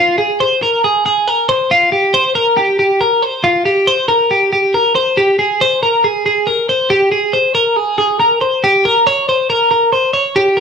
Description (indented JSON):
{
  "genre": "indie pop",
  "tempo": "139 BPM",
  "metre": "4/4",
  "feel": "straight",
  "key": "F minor",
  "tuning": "A4 = 439 Hz",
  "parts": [
    { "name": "twelve-string electric guitar", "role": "solo", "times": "0.0-10.6 s", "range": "F4 to Db5", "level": "-11 LUFS", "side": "equal", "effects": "none" }
  ],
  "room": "wet large studio reverb, RT60 0.9 s",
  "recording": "band playing live in one room",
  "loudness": "-11 LUFS",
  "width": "side -6 dB against mid",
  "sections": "0.0-10.6 A section",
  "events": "none",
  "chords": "none"
}